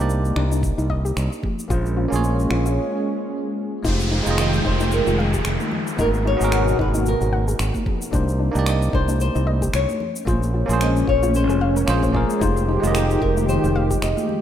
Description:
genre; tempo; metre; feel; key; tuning
sunset chillout; 112 BPM; 4/4; swing 57% on 16ths; F minor; A4 = 441 Hz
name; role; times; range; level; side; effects
bell-like tine electric piano; accompaniment; 0.0-14.4 s; Ab3 to G5; -27 LUFS; moving between left 4 dB and right 4 dB; auto-pan, ping-pong delay
modern bright fingered electric bass; bass; 0.0-14.1 s; F1 to C2; -21 LUFS; equal; none
electronic shaker and finger snaps; drums; 0.1-14.3 s; none; -32 LUFS; equal; studio reverb
congas; percussion; 0.2-14.4 s; none; -31 LUFS; equal; none
soft round pluck; arpeggios; 0.4-14.0 s; D4 to Gb5; -30 LUFS; left 4 dB; chorus, ping-pong delay
electronic kick drum; drums; 0.6-14.0 s; none; -25 LUFS; equal; studio reverb
lush unison pad; sustained chords; 1.4-14.4 s; Cb3 to G5; -24 LUFS; left 1 dB; chorus
downlifter; sound effects; 3.8-8.1 s; none; -29 LUFS; equal; none
flamenco guitar; melody; 4.4-14.4 s; Ab4 to Eb5; -26 LUFS; left 1 dB; tape echo
room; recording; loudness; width
light reverb, digital ambience; rough home demo mix; -18 LUFS; side -10 dB against mid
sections
0.0-3.8 A section; 3.8-14.4 B section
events
break 2.8-3.8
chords
0.0 Cm9; 1.4 Bbm9; 3.8 Fm9; 6.0 Abm9; 8.1 Cm9; 10.0 Bbm9; 12.4 Fm9

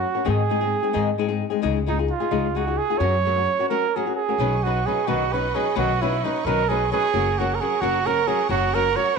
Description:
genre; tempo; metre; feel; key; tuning
mexican folk, mariachi; 88 BPM (dotted quarters); 6/8; straight; F# major, B major from 4.4 s; A4 = 440 Hz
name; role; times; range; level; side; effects
mellow trumpet; melody; 0.0-9.2 s; D#4 to C#5; -22 LUFS; right 9 dB; slapback echo
flamenco guitar; accompaniment; 0.0-9.2 s; G#2 to B4; -25 LUFS; left 12 dB; none
upright bass; bass; 0.0-9.2 s; F#1 to G#2; -27 LUFS; equal; transformer saturation
clear studio violin section; sustained chords; 4.4-9.2 s; A#4 to C#6; -33 LUFS; equal; none
room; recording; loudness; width
moderate echo chamber reverb, RT60 1.9 s, small room ambience; 1960s-style stereo with parts hard left and right, nothing above 10.6 kHz; -20 LUFS; side -5 dB against mid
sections
0.0-4.4 A section; 4.4-9.2 B section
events
break 3.7-4.4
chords
0.3 G#; 1.6 C#add9; 3.0 F#; 4.4 Badd9; 7.1 F#

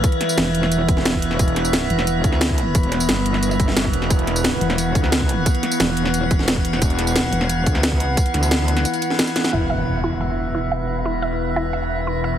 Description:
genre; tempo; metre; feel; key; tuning
dark technical drum and bass; 177 BPM; 4/4; straight; unclear; A4 = 440 Hz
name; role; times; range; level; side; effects
metallic inharmonic drone; sustained chords; 0.0-12.4 s; E3 to F#5; -22 LUFS; equal; chorus, built-in reverb, sidechain pumping
metallic wobble bass; bass; 0.0-8.8 s; E1 to D2; -21 LUFS; equal; chorus
drum and bass drum kit; drums; 0.0-9.6 s; crash cymbal, hi-hat, snare drum, tambourine; -22 LUFS; equal; overdrive, low-pass filter on hats, low-pass filter on perc, low-pass filter on snare, low-pass filter on cymbals
electronic kick drum; drums; 0.0-8.2 s; none; -19 LUFS; equal; overdrive
wide detuned saw bass; bass; 1.4-1.9, 3.9-4.6, 6.8-7.3, 9.5-12.4 s; E1; -24 LUFS; equal; chorus, tube saturation
wide unison pluck; arpeggios; 9.5-12.3 s; E4 to E5; -26 LUFS; right 2 dB; phaser, sidechain pumping, dub echo
impact; sound effects; 9.5-10.9 s; none; -28 LUFS; equal; none
room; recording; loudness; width
moderate lush hall reverb, RT60 2.2 s; heavily compressed radio sound; -17 LUFS; side -10 dB against mid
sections
0.0-9.5 A section; 9.5-12.4 B section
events
drop 0.0-9.5; drum fill 9.4; impact 9.5-10.9; filter sweep on synth arpeggio sound 9.5-12.4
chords
0.0 E5

